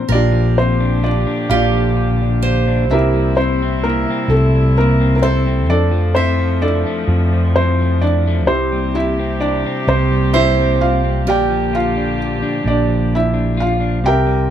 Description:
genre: acoustic folk-pop ballad.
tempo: 43 BPM (dotted quarters).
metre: 6/8.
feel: straight.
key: unclear.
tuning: A4 = 440 Hz.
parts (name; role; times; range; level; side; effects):
felt-muted upright piano; melody; 0.0-14.5 s; A3 to G5; -18 LUFS; equal; none.
electric guitar at the edge of break-up; accompaniment; 0.0-14.5 s; F2 to F4; -21 LUFS; left 4 dB; none.
warm chamber string section; sustained chords; 0.1-14.0 s; Bb2 to G4; -25 LUFS; right 2 dB; none.
picked steel-string acoustic guitar; arpeggios; 0.1-14.5 s; G4 to E5; -23 LUFS; right 6 dB; none.
mellow fretless electric bass; bass; 0.1-14.5 s; Bb1 to F2; -17 LUFS; right 1 dB; none.
room: little or no reverb.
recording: close, detailed microphones.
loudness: -13 LUFS.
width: side -10 dB against mid.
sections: 0.1-14.5 A section.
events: none.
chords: 0.1 Bb6; 2.9 C7; 5.7 Fmaj7; 8.5 C7; 11.3 Bb6.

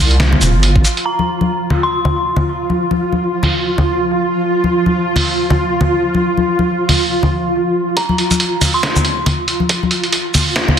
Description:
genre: deep dubstep.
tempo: 139 BPM.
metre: 4/4.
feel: swing 58% on 16ths, half-time.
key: unclear.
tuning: A4 = 441 Hz.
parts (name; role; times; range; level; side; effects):
granular cloud pad; sustained chords; 0.0-10.8 s; F4; -18 LUFS; right 1 dB; built-in reverb, vintage 12-bit sampler grit.
wobble bass; bass; 0.0-0.8 s; Eb1 to C2; -12 LUFS; equal; chorus, tube saturation.
trip hop sampler-style drum kit; drums; 0.1-10.8 s; hi-hat, shaker, snare drum; -17 LUFS; right 1 dB; high-pass filter on perc, low-pass filter on perc, high-pass filter on hats, low-pass filter on hats, high-pass filter on snare, low-pass filter on snare, high-pass filter on room, low-pass filter on room.
congas; percussion; 0.3-10.8 s; none; -17 LUFS; left 2 dB; none.
electronic kick drum; drums; 0.8, 8.0-9.8 s; none; -15 LUFS; equal; overdrive, high-pass filter on kick.
dark detuned synth bell; melody; 1.1-2.3, 8.0-9.2 s; Bb5 to C6; -21 LUFS; left 1 dB; chorus, dub echo.
room: moderate echo chamber reverb, RT60 1.4 s, digital ambience.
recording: dense, heavily limited modern master.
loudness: -13 LUFS.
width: side -8 dB against mid.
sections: 0.0-1.1 A section; 1.1-8.0 B section; 8.0-10.8 C section.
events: filter sweep on drum 1.1-8.0; build-up 8.0-10.8.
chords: 0.0 F5; 1.1 N.C..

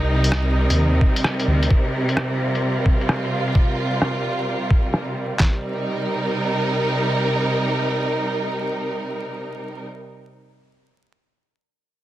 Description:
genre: future garage.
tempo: 130 BPM.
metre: 4/4.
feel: swing 66% on 16ths.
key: C minor.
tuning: A4 = 441 Hz.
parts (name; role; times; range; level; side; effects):
warm symphonic string section; sustained chords; 0.0-9.8 s; C3 to Bb4; -22 LUFS; right 1 dB; sidechain pumping.
dark detuned saw bass; bass; 0.0-1.7 s; C2 to Eb2; -18 LUFS; equal; tube saturation, sidechain pumping.
lo-fi sampler-style drum kit; drums; 0.2-5.4 s; hi-hat, rim click; -24 LUFS; equal; low-pass filter on hats, soft clipping on snare, low-pass filter on snare.
lo-fi sampler-style drum kit; drums; 1.0-5.5 s; handclaps, kick drum, snare drum; -17 LUFS; equal; none.
room: light reverb, digital ambience.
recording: dense, heavily limited modern master, vinyl crackle.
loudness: -18 LUFS.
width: side -14 dB against mid.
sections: 0.0-5.4 A section; 5.4-9.1 B section.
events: filter sweep on drum 0.0-5.4.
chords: 0.0 Cm7.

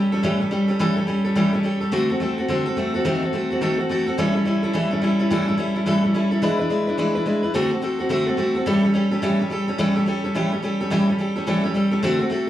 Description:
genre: rock.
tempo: 214 BPM.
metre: 4/4.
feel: swing 62% on 8ths.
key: A mixolydian.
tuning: A4 = 442 Hz.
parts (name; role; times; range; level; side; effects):
picked steel-string acoustic guitar; solo; 0.0-12.5 s; A2 to B4; -19 LUFS; equal; slapback echo.
room: moderate club ambience, RT60 0.5 s.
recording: live gig heard through the venue's PA, club reverb.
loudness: -19 LUFS.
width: side -12 dB against mid.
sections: 0.0-10.9 A section; 10.9-12.5 A section.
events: none.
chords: 0.0 A7; 1.9 D7; 3.1 D#dim7; 4.2 A7; 6.4 E7; 7.5 D7; 8.7 A7.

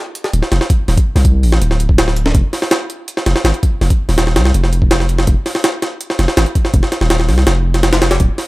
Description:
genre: drum and bass, jungle.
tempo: 164 BPM.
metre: 4/4.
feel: straight.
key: unclear.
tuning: A4 = 440 Hz.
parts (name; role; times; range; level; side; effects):
jungle sampler-style drum kit; drums; 0.2-8.5 s; hi-hat, kick drum, snare drum; -14 LUFS; equal; overdrive, studio reverb.
long sustained 808-style bass; bass; 0.3-8.3 s; D1 to C2; -13 LUFS; equal; tube saturation.
room: little or no reverb.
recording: none.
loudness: -12 LUFS.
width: side -20 dB against mid.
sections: 0.0-8.5 A section.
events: none.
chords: none.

